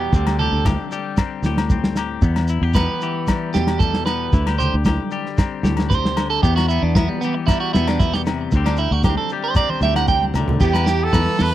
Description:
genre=highlife guitar band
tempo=114 BPM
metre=4/4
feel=straight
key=E minor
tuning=A4 = 440 Hz
part: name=clean electric guitar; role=accompaniment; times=0.0-11.5 s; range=E2 to G4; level=-25 LUFS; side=left 8 dB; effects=warbly pitch drift
part: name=electric guitar at the edge of break-up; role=arpeggios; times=0.0-11.5 s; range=G3 to G5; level=-23 LUFS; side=right 8 dB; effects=tape echo
part: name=fingered electric bass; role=bass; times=0.0-11.5 s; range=D2 to E2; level=-21 LUFS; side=equal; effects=none
part: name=warm soul drum kit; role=drums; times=0.1-11.5 s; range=crash cymbal, kick drum, snare drum, toms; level=-20 LUFS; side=equal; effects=none
part: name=congas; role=percussion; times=0.1-11.3 s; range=none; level=-27 LUFS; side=equal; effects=none
part: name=shekere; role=percussion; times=0.1-11.5 s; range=none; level=-24 LUFS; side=right 1 dB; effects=none
part: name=agogo bells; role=percussion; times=0.3-11.3 s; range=none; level=-31 LUFS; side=left 8 dB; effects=none
part: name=brilliant trumpet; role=melody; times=10.6-11.5 s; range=G4 to B4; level=-22 LUFS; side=right 2 dB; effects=none
room=little or no reverb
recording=dry, close 1970s-style studio recording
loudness=-16 LUFS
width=side -13 dB against mid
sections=0.0-10.6 A section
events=clean electric guitar solo 0.0-10.6; drum fill 9.6-10.6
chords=0.1 D7sus4; 2.2 Em; 4.3 D7sus4; 6.4 Em; 8.5 D7sus4; 10.6 Em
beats=| 0.14 0.66 1.19 1.71 | 2.23 2.76 3.28 3.81 | 4.33 4.85 5.38 5.90 | 6.43 6.95 7.47 8.00 | 8.52 9.05 9.57 10.09 | 10.62 11.14

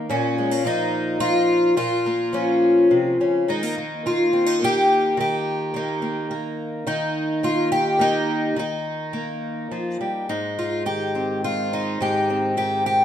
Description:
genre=folk, solo fingerstyle acoustic guitar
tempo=106 BPM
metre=3/4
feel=rubato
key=Ab major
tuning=A4 = 439 Hz
part: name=fingerpicked twelve-string acoustic guitar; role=solo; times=0.0-13.0 s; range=Ab2 to G4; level=-19 LUFS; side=left 1 dB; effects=none
room=light reverb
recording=minimal, uncompressed stereo recording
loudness=-19 LUFS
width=side -10 dB against mid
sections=0.0-10.3 A section; 10.3-13.0 B section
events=none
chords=0.1 Bbm; 3.5 Eb; 10.3 Abmaj7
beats=| 0.09 0.65 1.21 | 1.77 2.34 2.91 | 3.49 4.06 4.63 | 5.19 5.75 6.31 | 6.87 7.43 8.00 | 8.57 9.14 9.72 | 10.30 10.87 11.44 | 12.01 12.57

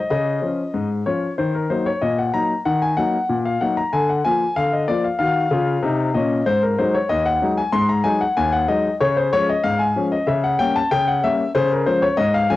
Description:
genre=ragtime piano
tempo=94 BPM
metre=2/4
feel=straight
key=Db major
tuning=A4 = 442 Hz
part: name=clear concert grand piano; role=solo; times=0.0-12.6 s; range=Eb2 to C6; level=-17 LUFS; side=left 2 dB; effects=cassette tape
room=moderate spring reverb, RT60 1.5 s, studio reverb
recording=home recording on cassette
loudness=-17 LUFS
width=side -15 dB against mid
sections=0.0-12.6 A section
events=none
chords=0.1 Db; 1.4 Ebm; 3.9 Bb/D; 5.2 Ebm; 6.5 Ab5; 9.0 Db; 10.3 Dbdim7; 11.6 Db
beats=| 0.11 0.75 | 1.38 2.02 | 2.65 3.29 | 3.92 4.56 | 5.20 5.83 | 6.46 7.10 | 7.73 8.37 | 9.00 9.64 | 10.28 10.91 | 11.55 12.19

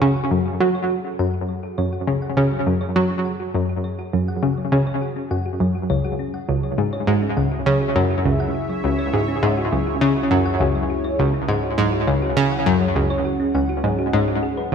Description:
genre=ambient, sequencer-driven space music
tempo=102 BPM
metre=4/4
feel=straight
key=F# minor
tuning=A4 = 440 Hz
part: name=sweeping resonant pad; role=sustained chords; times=0.0-14.7 s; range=C#4 to F#5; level=-28 LUFS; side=equal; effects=chorus
part: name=thumb-piano-like synth pluck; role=arpeggios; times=0.0-14.7 s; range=F#3 to F#5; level=-30 LUFS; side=moving between left 7 dB and right 2 dB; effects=chorus, auto-pan, analog delay
part: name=analog pluck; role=riff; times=0.0-14.7 s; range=C#2 to F#3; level=-19 LUFS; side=equal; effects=chorus, analog delay
part: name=analog drone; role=bass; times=1.0-14.7 s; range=C#2 to F#2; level=-36 LUFS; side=equal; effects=none
room=wet echo chamber reverb, RT60 2.4 s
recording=echo-heavy mix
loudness=-18 LUFS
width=side -7 dB against mid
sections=0.0-14.7 A section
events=fade-in on synth arpeggio sound 0.0-14.7; fade-in on analog synth pad 0.0-14.7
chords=0.0 F#madd9; 5.9 C#m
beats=0.01 0.60 | 1.19 1.78 2.37 2.96 | 3.54 4.13 4.72 5.31 | 5.90 6.49 7.07 7.66 | 8.25 8.84 9.43 10.02 | 10.60 11.19 11.78 12.37 | 12.96 13.54 14.13 14.72

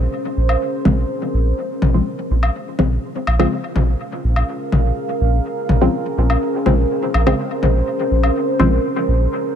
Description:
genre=dub techno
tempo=124 BPM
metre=4/4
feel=straight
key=Bb minor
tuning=A4 = 440 Hz
part: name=deep dark ambient pad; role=sustained chords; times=0.0-9.6 s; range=Db4 to F5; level=-22 LUFS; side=right 1 dB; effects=chorus, built-in reverb
part: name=round analog bass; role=bass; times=0.0-9.3 s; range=Bb1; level=-16 LUFS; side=equal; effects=none
part: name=electronic woodblock and toms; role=percussion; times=0.5-8.7 s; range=none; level=-24 LUFS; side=left 3 dB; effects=overdrive, dub echo
part: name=filtered dub chord stab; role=stabs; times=0.9-8.7 s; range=Db3 to C4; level=-22 LUFS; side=left 1 dB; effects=chorus, phaser, dub echo
room=light reverb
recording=none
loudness=-16 LUFS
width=side -8 dB against mid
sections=0.0-9.6 A section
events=filter sweep on synth stab 0.0-9.6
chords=0.0 Bbm9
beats=| 0.13 0.61 1.10 1.58 | 2.06 2.55 3.03 3.52 | 4.00 4.48 4.97 5.45 | 5.93 6.42 6.90 7.39 | 7.87 8.35 8.84 9.32

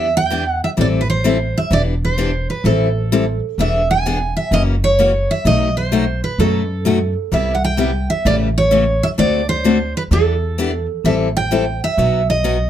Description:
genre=acoustic string swing (jazz manouche)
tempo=128 BPM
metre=4/4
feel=swing 65% on 8ths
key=E minor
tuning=A4 = 440 Hz
part: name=picked steel-string acoustic guitar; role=melody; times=0.0-12.7 s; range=A4 to G#5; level=-18 LUFS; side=right 3 dB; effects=none
part: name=picked steel-string acoustic guitar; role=accompaniment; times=0.0-12.6 s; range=B2 to A4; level=-18 LUFS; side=left 5 dB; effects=none
part: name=upright bass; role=bass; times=0.0-12.7 s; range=E1 to F#2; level=-19 LUFS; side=equal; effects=none
room=light reverb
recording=none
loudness=-14 LUFS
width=side -10 dB against mid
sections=0.0-12.7 A section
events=none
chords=0.0 Em7; 0.8 Am7; 1.7 Em7; 2.7 Am7; 3.6 E7; 4.5 F#7; 5.5 B7; 7.3 Cmaj7; 8.3 A7; 9.2 D7; 10.1 Em7; 11.1 Am7; 12.0 B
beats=0.31 0.78 1.25 | 1.72 2.18 2.65 3.12 | 3.59 4.05 4.52 4.99 | 5.46 5.92 6.39 6.86 | 7.32 7.79 8.26 8.72 | 9.19 9.66 10.12 10.59 | 11.05 11.52 11.99 12.45

